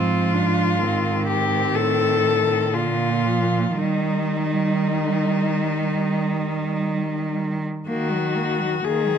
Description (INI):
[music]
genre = classical, lyrical piece for cello ensemble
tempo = 56-66 BPM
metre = 4/4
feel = rubato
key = Eb major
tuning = A4 = 440 Hz
[part]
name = rich cello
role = melody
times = 0.0-9.2 s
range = Eb4 to A4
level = -24 LUFS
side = left 6 dB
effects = none
[part]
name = rich cello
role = second line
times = 0.0-7.4 s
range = G3 to D4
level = -27 LUFS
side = right 11 dB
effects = none
[part]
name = rich cello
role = accompaniment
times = 0.0-9.2 s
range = D3 to Bb3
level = -27 LUFS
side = left 1 dB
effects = none
[part]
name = rich cello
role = bass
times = 0.0-9.2 s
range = Ab2 to Eb3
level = -24 LUFS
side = right 3 dB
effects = none
[sound]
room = moderate recital hall reverb, RT60 1.3 s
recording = close, detailed microphones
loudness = -19 LUFS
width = side -8 dB against mid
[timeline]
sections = 0.0-7.9 A section; 7.9-9.2 B section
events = none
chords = 0.0 Fm/Ab; 1.8 Adim; 2.7 Bb; 3.8 Eb; 7.9 Ebm